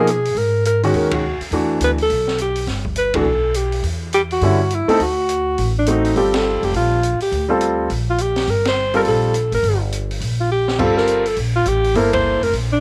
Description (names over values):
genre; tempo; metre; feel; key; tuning
modal jazz; 207 BPM; 4/4; swing 61% on 8ths; G dorian from 6.2 s; A4 = 440 Hz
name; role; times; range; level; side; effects
breathy alto saxophone; melody; 0.0-12.8 s; D4 to C5; -21 LUFS; equal; none
warm concert grand piano; accompaniment; 0.0-12.4 s; D3 to C5; -21 LUFS; equal; none
upright bass; bass; 0.0-12.8 s; F1 to B2; -24 LUFS; equal; none
open jazz drum kit; drums; 0.1-12.6 s; crash cymbal, hi-hat, kick drum, ride cymbal, snare drum; -30 LUFS; equal; none
room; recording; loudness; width
little or no reverb; none; -18 LUFS; mono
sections
0.0-6.2 A section; 6.2-12.8 B section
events
band accent 1.1, 3.1, 6.3, 8.6, 12.1; drum fill 10.5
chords
0.0 G#m9; 1.5 Em9; 5.0 D7b9; 6.2 Gm9